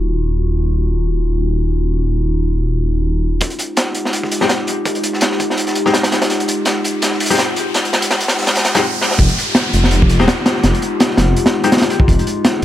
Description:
drum and bass, jungle; 166 BPM; 4/4; swing 55% on 16ths; F minor; A4 = 440 Hz
warbly tape-like pad; sustained chords; 0.0-12.6 s; Ab3 to Ab4; -21 LUFS; left 2 dB; chorus, built-in reverb
dark detuned saw bass; bass; 0.0-3.4, 9.2-12.6 s; Eb1 to F1; -16 LUFS; equal
crunchy breakbeat drum kit; drums; 3.4-12.6 s; hi-hat, kick drum, snare drum; -15 LUFS; equal; high-pass filter on kick, high-pass filter on hats, high-pass filter on snare, high-pass filter on room
crunchy breakbeat drum kit; drums; 3.4-8.8 s; hi-hat, snare drum; -24 LUFS; equal; high-pass filter on hats, high-pass filter on snare, high-pass filter on room
riser and downlifter; sound effects; 5.7-12.1 s; -25 LUFS; equal
bright baby grand piano; stabs; 4.4-11.7 s; Ab3 to G4; -20 LUFS; left 4 dB; low-pass filter, dub echo
small room ambience; -13 LUFS; side -12 dB against mid
0.0-3.4 A section; 3.4-9.2 B section; 9.2-12.6 C section
build-up 3.4-9.2; drum fill 6.3-8.8, 9.0; drop 9.2-12.6
0.0 Ebm9; 3.4 Fm9

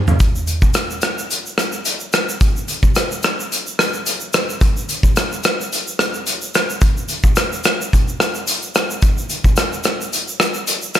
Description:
indie pop; 109 BPM; 4/4; swing 55% on 16ths
loose indie drum kit; drums; 0.1-11.0 s; hi-hat, kick drum, rim click, shaker, toms; -16 LUFS; equal
moderate recital hall reverb, RT60 1.6 s; big arena sound; -16 LUFS; side -11 dB against mid
0.2-11.0 A section
drum fill 0.0

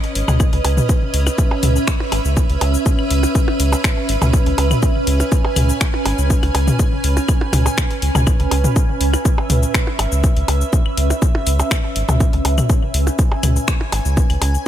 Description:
minimal techno; 122 BPM; 4/4; straight; C# minor; A4 = 440 Hz
punchy analog drum machine; drums; 0.0-14.6 s; cabasa, finger snaps, hi-hat; -24 LUFS; left 4 dB; overdrive
granular cloud pad; texture; 0.0-14.7 s; C#4 to G#5; -22 LUFS; right 2 dB; built-in reverb, sidechain pumping
round analog bass; bass; 0.2-14.6 s; G#1 to C#2; -17 LUFS; equal; sidechain pumping
electronic toms, percussion blips and claves; percussion; 0.3-14.5 s; -22 LUFS; left 1 dB; digital delay
electronic kick drum; drums; 0.4-14.3 s; -16 LUFS; equal
little or no reverb; -14 LUFS; side -11 dB against mid
0.0-14.7 A section
0.0 C#m7

